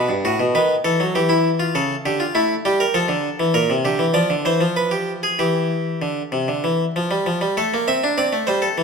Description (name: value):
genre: classical, baroque-style two-part invention for harpsichord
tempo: 99 BPM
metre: 3/4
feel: straight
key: D minor, F major from 3.6 s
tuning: A4 = 440 Hz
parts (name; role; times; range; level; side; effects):
- harpsichord; solo; 0.0-8.8 s; G2 to E5; -17 LUFS; equal; none
room: moderate recital hall reverb, RT60 1.6 s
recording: minimal, uncompressed stereo recording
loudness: -17 LUFS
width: side -5 dB against mid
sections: 0.0-7.3 A section; 7.3-8.8 B section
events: none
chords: 0.0 B7; 1.2 Em; 1.8 A7/C#; 3.0 Dm; 3.6 Gm7/Bb; 4.8 Fmadd9; 5.4 C (rootless); 7.3 F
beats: 0.55 1.16 | 1.76 2.36 2.96 | 3.56 4.16 4.77 | 5.38 6.01 6.63 | 7.26 7.87 8.48